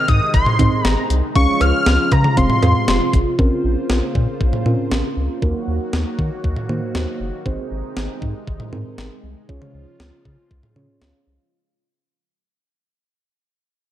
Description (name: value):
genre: synth-pop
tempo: 118 BPM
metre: 4/4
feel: straight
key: unclear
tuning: A4 = 441 Hz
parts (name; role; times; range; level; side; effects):
- wide unison lead; melody; 0.0-3.1 s; Bb5 to F6; -20 LUFS; left 1 dB; slapback echo
- muted felt-like synth keys; accompaniment; 0.0-11.5 s; Bb3 to F5; -24 LUFS; right 3 dB; chorus
- phased analog pad; sustained chords; 0.0-11.5 s; C3 to C5; -26 LUFS; equal; phaser, chorus
- round analog bass; bass; 0.1-11.4 s; F1 to Eb3; -20 LUFS; equal; none
- clean 12-bit digital drum machine; drums; 0.1-11.1 s; cowbell, hi-hat, kick drum, snare drum, toms; -20 LUFS; equal; none
room: moderate lush hall reverb, RT60 2.1 s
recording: dark, warm production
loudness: -16 LUFS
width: side -12 dB against mid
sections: 0.0-3.4 A section; 3.4-11.5 B section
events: fade-out 3.4-11.5; synth keys fill 10.8-11.5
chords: 0.0 Ab; 1.4 Db; 2.4 Fm; 3.4 Bbmadd9; 5.4 Ebm; 7.5 Ab; 9.5 Db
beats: 0.34 0.85 | 1.35 1.86 2.37 2.88 | 3.39 3.90 4.41 4.91 | 5.42 5.93 6.44 6.95 | 7.46 7.96 8.47 8.98 | 9.49 10.00 10.51 11.02